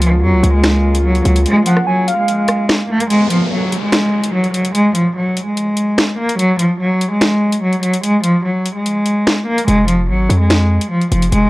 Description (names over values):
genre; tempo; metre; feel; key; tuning
hip hop, drill; 146 BPM; 4/4; half-time; unclear; A4 = 441 Hz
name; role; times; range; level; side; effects
rich cello; melody; 0.0-11.5 s; F3 to Bb3; -14 LUFS; equal; low-pass filter
dark French horn section; sustained chords; 0.0-3.1 s; Db3 to F4; -22 LUFS; equal; none
hard-hitting 808-style bass; bass; 0.0-1.5, 9.7-11.5 s; F1 to F2; -14 LUFS; equal; none
drill drum kit; drums; 0.0-11.4 s; finger snaps, hi-hat, rim click, snare drum; -18 LUFS; equal; none
warm velvety synth lead; second line; 1.7-2.7 s; F5 to Ab5; -21 LUFS; right 1 dB; chorus, tape echo
downlifter; sound effects; 3.1-6.4 s; none; -25 LUFS; equal; none
room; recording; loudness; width
digital ambience; dry, gritty hardware recording, cassette tape; -12 LUFS; side -19 dB against mid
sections
0.0-3.1 A section; 3.1-11.5 B section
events
kick muted 1.5-3.1; break 3.1-9.7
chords
0.0 Db6; 3.1 N.C.; 9.7 Fm